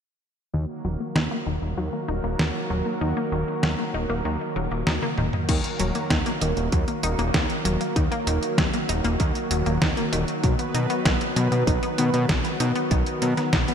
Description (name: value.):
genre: synthwave.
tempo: 97 BPM.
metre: 4/4.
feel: straight.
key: Eb minor.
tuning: A4 = 440 Hz.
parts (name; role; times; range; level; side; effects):
brassy analog pad; sustained chords; 0.5-13.7 s; Eb3 to B4; -28 LUFS; right 1 dB; chorus, sidechain pumping.
wide unison pluck; arpeggios; 0.5-13.7 s; Eb3 to Eb4; -28 LUFS; left 2 dB; ping-pong delay.
fat analog bass; bass; 0.5-13.6 s; Eb1 to B2; -26 LUFS; equal; none.
detuned 8-bit digital drum machine; drums; 1.2-13.7 s; crash cymbal, hi-hat, snare drum, toms; -27 LUFS; right 1 dB; gated reverb.
electronic kick drum; drums; 5.5-13.7 s; none; -25 LUFS; equal; none.
room: moderate lush hall reverb, RT60 2.7 s.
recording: bright 1980s-style digital production.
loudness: -22 LUFS.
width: side -8 dB against mid.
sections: 0.5-5.5 A section; 5.5-13.7 B section.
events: filter sweep on analog synth bass 0.5-5.5; filter sweep on synth arpeggio sound 0.5-5.5; drum fill 5.0-5.5.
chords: 0.5 Ebm; 10.4 B.